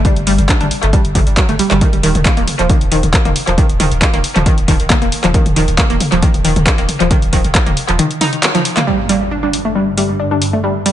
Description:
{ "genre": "driving peak-time techno", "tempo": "136 BPM", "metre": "4/4", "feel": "straight", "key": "unclear", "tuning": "A4 = 440 Hz", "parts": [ { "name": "analog pluck", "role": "riff", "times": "0.0-10.9 s", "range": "Eb3 to Eb4", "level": "-16 LUFS", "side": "equal", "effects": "chorus, sidechain pumping, dub echo" }, { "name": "saturated sub bass", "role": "bass", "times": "0.0-8.0 s", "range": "Eb1 to G1", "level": "-18 LUFS", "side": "equal", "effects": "tube saturation, sidechain pumping, low-pass filter" }, { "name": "electronic kick drum", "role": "drums", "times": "0.0-7.6 s", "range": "none", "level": "-14 LUFS", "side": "equal", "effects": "none" }, { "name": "punchy analog drum machine", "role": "drums", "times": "0.0-10.9 s", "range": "handclaps, hi-hat, toms", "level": "-17 LUFS", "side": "left 1 dB", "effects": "sidechain pumping on hats, sidechain pumping on toms, dub echo" }, { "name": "swarming drone", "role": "drone", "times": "9.4-10.9 s", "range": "G2 to D3", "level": "-21 LUFS", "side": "right 1 dB", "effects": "built-in reverb, sidechain pumping" }, { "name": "impact", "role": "sound effects", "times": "8.9-10.6 s", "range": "none", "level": "-25 LUFS", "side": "equal", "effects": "none" } ], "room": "moderate echo chamber reverb, RT60 2.0 s, digital ambience", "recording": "echo-heavy mix, nothing above 10.5 kHz", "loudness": "-11 LUFS", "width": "side -12 dB against mid", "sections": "0.0-8.9 A section; 8.9-10.9 B section", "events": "band accent 8.4; impact 8.9-10.6", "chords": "0.0 G5; 1.8 Eb5; 8.9 G5" }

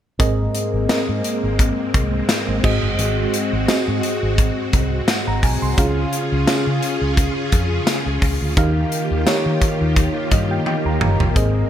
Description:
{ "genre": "1980s-style pop", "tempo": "86 BPM", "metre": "4/4", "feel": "swing 55% on 16ths", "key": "unclear", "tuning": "A4 = 441 Hz", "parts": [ { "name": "mellow FM electric piano", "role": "accompaniment", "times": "0.2-11.7 s", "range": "Ab2 to C6", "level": "-22 LUFS", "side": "right 1 dB", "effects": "chorus" }, { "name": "string machine, violas", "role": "sustained chords", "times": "0.2-11.7 s", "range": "Db3 to Ab4", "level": "-24 LUFS", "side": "left 1 dB", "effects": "ensemble chorus" }, { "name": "vintage muted fingered electric bass", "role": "bass", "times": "0.2-11.6 s", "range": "Gb1 to Eb3", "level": "-22 LUFS", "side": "equal", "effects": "none" }, { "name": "modern studio drum kit", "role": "drums", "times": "0.2-11.5 s", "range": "crash cymbal, hi-hat, kick drum, snare drum, tambourine, toms", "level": "-20 LUFS", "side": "equal", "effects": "gated reverb" } ], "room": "light reverb, studio reverb", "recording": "none", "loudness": "-16 LUFS", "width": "side -10 dB against mid", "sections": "0.2-11.7 A section", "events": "FM electric piano fill 10.0-11.4; drum fill 10.7-11.4", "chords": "0.2 Abadd9; 2.6 Ab7; 5.8 Db; 8.6 Ebadd9" }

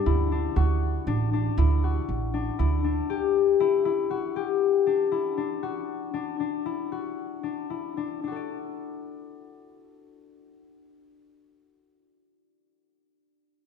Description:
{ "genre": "contemporary instrumental, contemporary", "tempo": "117 BPM", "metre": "5/4", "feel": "straight", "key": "D major", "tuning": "A4 = 445 Hz", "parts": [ { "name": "concert harp", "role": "arpeggios", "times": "0.0-12.0 s", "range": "C4 to D5", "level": "-26 LUFS", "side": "left 8 dB", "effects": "none" }, { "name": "upright bass", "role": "bass", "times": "0.1-3.0 s", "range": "A1 to D2", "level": "-24 LUFS", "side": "right 3 dB", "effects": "none" } ], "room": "moderate concert hall reverb, RT60 1.9 s", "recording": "minimal, uncompressed stereo recording", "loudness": "-24 LUFS", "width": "side -6 dB against mid", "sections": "0.0-8.2 A section; 8.2-10.8 B section", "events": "slowing down 4.1-8.2", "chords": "0.0 Dsus4; 0.6 Dadd9; 3.1 Dadd11; 5.6 Dadd9; 8.2 D" }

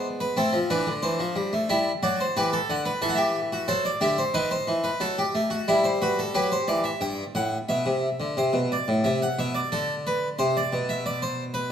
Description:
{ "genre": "classical, baroque-style 3-part fugue for harpsichord", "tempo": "90 BPM", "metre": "4/4", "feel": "straight", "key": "unclear", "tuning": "A4 = 442 Hz", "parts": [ { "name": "harpsichord", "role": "solo", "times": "0.0-11.7 s", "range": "G2 to G5", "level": "-23 LUFS", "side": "equal", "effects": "none" } ], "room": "moderate recital hall reverb, RT60 1.7 s", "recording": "none", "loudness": "-23 LUFS", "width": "side -8 dB against mid", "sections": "0.0-7.0 A section; 7.0-11.7 B section", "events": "none", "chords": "0.4 Am; 1.7 Em; 3.0 F#m7b5/E; 4.3 B7/D#; 5.7 Em/G; 8.4 Am; 9.7 D5; 11.1 G/B (rootless)" }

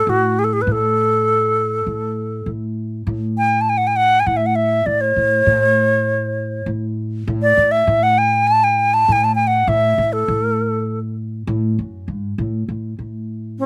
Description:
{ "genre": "Arabic maqam ensemble", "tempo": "100 BPM", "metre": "4/4", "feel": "straight", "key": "A maqam rast", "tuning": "A4 = 440 Hz", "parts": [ { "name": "bright alto flute", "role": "melody", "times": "0.0-13.7 s", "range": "C#4-45c to A5", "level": "-18 LUFS", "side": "equal", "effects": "none" }, { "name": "upright bass", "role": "bass", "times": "0.0-13.7 s", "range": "F#2 to A2", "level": "-24 LUFS", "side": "equal", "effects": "none" } ], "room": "little or no reverb", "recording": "recorded outdoors, with no room sound", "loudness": "-18 LUFS", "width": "mono", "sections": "0.0-3.1 A section; 3.1-12.7 B section", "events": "none", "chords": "none" }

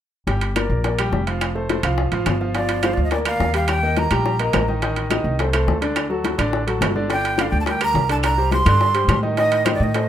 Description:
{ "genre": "latin, salsa", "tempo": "211 BPM", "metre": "4/4", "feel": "straight", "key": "G minor", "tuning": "A4 = 441 Hz", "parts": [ { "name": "bright concert grand piano", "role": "accompaniment", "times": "0.3-10.1 s", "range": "D3 to G5", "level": "-24 LUFS", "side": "equal", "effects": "none" }, { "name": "upright bass", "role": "bass", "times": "0.3-10.1 s", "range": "F1 to A2", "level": "-22 LUFS", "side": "equal", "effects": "none" }, { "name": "bongos", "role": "percussion", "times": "0.3-10.1 s", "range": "none", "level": "-27 LUFS", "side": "left 7 dB", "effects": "none" }, { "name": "timbales", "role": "percussion", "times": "0.3-10.1 s", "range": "none", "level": "-26 LUFS", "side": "right 7 dB", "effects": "none" }, { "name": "claves", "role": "percussion", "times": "0.6-9.8 s", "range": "none", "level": "-33 LUFS", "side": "equal", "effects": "none" }, { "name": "congas", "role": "percussion", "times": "2.5-10.1 s", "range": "none", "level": "-31 LUFS", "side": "left 2 dB", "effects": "none" }, { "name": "breathy bright jazz flute", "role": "melody", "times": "2.6-4.7, 7.1-10.1 s", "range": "C5 to C6", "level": "-21 LUFS", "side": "right 2 dB", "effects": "none" } ], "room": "moderate studio reverb, RT60 0.5 s", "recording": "rough home demo mix", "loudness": "-17 LUFS", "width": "side -10 dB against mid", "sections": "0.3-2.6 A section; 2.6-10.1 B section", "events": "none", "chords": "0.3 Gm; 1.4 F; 2.6 Gm7; 3.7 Eb; 4.8 Adim; 6.0 D; 7.1 Gm; 8.2 Cmadd9; 9.4 Adim" }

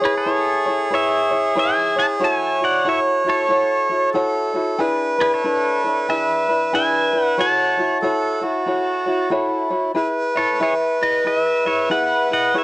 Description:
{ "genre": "Hawaiian", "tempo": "93 BPM", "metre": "4/4", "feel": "swing 62% on 8ths", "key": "A major", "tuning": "A4 = 435 Hz", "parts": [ { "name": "melodica", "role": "second line", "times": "0.0-12.6 s", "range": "E4 to C#5", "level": "-20 LUFS", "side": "right 1 dB", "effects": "none" }, { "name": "tenor ukulele", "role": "accompaniment", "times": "0.0-12.6 s", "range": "D4 to E5", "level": "-22 LUFS", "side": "left 1 dB", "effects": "none" }, { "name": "pedal steel guitar", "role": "melody", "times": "0.1-12.6 s", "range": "G#4 to A5", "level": "-20 LUFS", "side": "equal", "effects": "cassette tape" } ], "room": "wet studio reverb, RT60 0.5 s", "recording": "home recording on cassette", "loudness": "-16 LUFS", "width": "side -19 dB against mid", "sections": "0.0-10.0 A section; 10.0-12.6 B section", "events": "none", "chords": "0.0 Amaj9; 2.2 F#m7; 4.8 E7; 7.4 A6; 10.0 E" }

